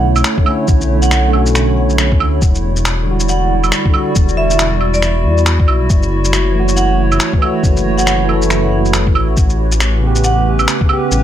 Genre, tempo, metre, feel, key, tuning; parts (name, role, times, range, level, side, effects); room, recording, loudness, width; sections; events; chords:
future garage; 138 BPM; 4/4; swing 60% on 16ths; B minor; A4 = 440 Hz
vibraphone with hard mallets; melody; 0.0-10.5 s; D5 to F#5; -22 LUFS; right 3 dB; tape echo
tine electric piano; accompaniment; 0.0-11.2 s; C#3 to A4; -19 LUFS; right 2 dB; medium stereo tremolo, sidechain pumping, analog delay
warbly tape-like pad; sustained chords; 0.0-11.2 s; D3 to D5; -19 LUFS; equal; chorus, built-in reverb, sidechain pumping
dark detuned saw bass; bass; 0.0-11.2 s; E1 to E2; -15 LUFS; left 1 dB
electronic shaker, claves and finger snaps; drums; 0.2-11.2 s; -18 LUFS; right 1 dB; studio reverb
electronic kick drum; drums; 0.4-10.9 s; -13 LUFS; left 1 dB; studio reverb
light reverb, digital ambience; -11 LUFS; side -11 dB against mid
0.0-11.2 A section
0.0 Bm11; 2.4 Em9; 5.9 F#m7; 9.4 A9